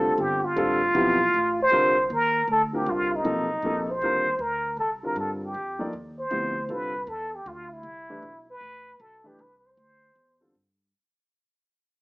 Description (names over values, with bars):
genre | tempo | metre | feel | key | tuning
modal jazz | 156 BPM | 3/4 | swing 66% on 8ths | unclear | A4 = 441 Hz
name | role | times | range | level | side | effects
trumpet with plunger mute | melody | 0.0-10.6 s | Eb4 to C5 | -24 LUFS | equal | none
warm upright piano | accompaniment | 0.0-10.5 s | C3 to D5 | -28 LUFS | equal | none
upright bass | bass | 0.0-10.9 s | F1 to G2 | -37 LUFS | equal | none
room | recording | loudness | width
moderate large studio reverb, RT60 1.0 s | small speaker sound | -22 LUFS | side -24 dB against mid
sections
0.0-1.7 A section; 1.7-10.9 B section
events
fade-out 1.7-10.9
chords
0.0 Dm11; 1.7 Cm11; 6.3 Dm11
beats
0.18 | 0.56 0.95 1.33 | 1.71 2.09 2.48 | 2.86 3.24 3.62 | 4.01 4.39 4.78 | 5.16 5.54 5.92 | 6.31 6.69 7.08 | 7.46 7.84 8.23 | 8.61 9.00 9.38 | 9.77 10.15 10.54